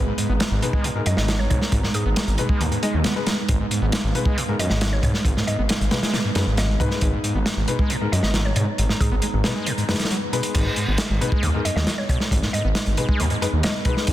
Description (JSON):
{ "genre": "breakbeat, breaks", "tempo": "136 BPM", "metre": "4/4", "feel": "straight", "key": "G# dorian", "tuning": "A4 = 440 Hz", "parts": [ { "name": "dark analog pad", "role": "sustained chords", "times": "0.0-14.1 s", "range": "G#3 to A#5", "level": "-32 LUFS", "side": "right 2 dB", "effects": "chorus, vintage 12-bit sampler grit, sidechain pumping" }, { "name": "screaming distorted acid line", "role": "riff", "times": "0.0-14.1 s", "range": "F#2 to B3", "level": "-27 LUFS", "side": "equal", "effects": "distortion, chorus, cassette tape, dub echo" }, { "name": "dark grand piano", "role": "stabs", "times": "0.0-14.1 s", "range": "G#3 to D#5", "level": "-30 LUFS", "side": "left 5 dB", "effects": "vintage 12-bit sampler grit, dub echo" }, { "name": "detuned saw bass", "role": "bass", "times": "0.0-14.1 s", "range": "G#1 to G#2", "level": "-23 LUFS", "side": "equal", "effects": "tube saturation" }, { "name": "crunchy breakbeat drum kit", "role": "drums", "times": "0.2-14.1 s", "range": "crash cymbal, hi-hat, kick drum, snare drum", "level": "-23 LUFS", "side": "equal", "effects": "none" }, { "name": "mallet-like synth pluck", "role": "melody", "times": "1.1-14.0 s", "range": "G#4 to D#5", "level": "-33 LUFS", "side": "equal", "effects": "chorus, old record sound, dub echo" } ], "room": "light reverb", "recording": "dense, heavily limited modern master", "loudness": "-19 LUFS", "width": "side -14 dB against mid", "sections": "0.0-10.6 A section; 10.6-14.1 A section", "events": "drop 0.0-10.6, 10.6-14.1", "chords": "0.0 G#m" }